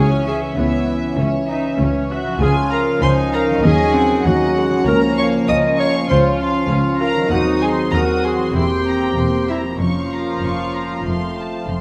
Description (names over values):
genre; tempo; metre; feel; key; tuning
cinematic, playful, whimsical film cue; 98 BPM; 4/4; straight; Bb minor; A4 = 440 Hz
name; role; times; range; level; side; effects
clear studio violin section; melody; 0.0-11.8 s; C#5 to Eb6; -30 LUFS; equal; none
warm clarinet; second line; 0.0-11.6 s; E4 to Eb5; -23 LUFS; equal; none
warm studio violin section; second line; 0.0-11.6 s; E5 to Eb6; -28 LUFS; equal; none
warm studio viola section; accompaniment; 0.0-11.8 s; F3 to F#4; -27 LUFS; equal; none
mellow French horn section; sustained chords; 0.0-11.8 s; E3 to Db4; -24 LUFS; equal; none
concert harp; arpeggios; 0.0-11.8 s; C#3 to Db5; -31 LUFS; equal; none
dark studio double bass section; bass; 0.0-11.8 s; E1 to Eb2; -26 LUFS; equal; none
warm studio cello section; bass; 0.0-11.8 s; C#2 to F2; -26 LUFS; equal; none
room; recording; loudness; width
moderate scoring stage reverb, RT60 2.0 s; none; -18 LUFS; mono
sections
0.0-11.8 A section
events
none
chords
0.0 C#m; 2.4 Db; 3.6 Ebm7; 4.9 Bbm/Db; 7.3 Cdim/Eb; 8.5 C7/E; 9.8 Bbm/F; 11.1 F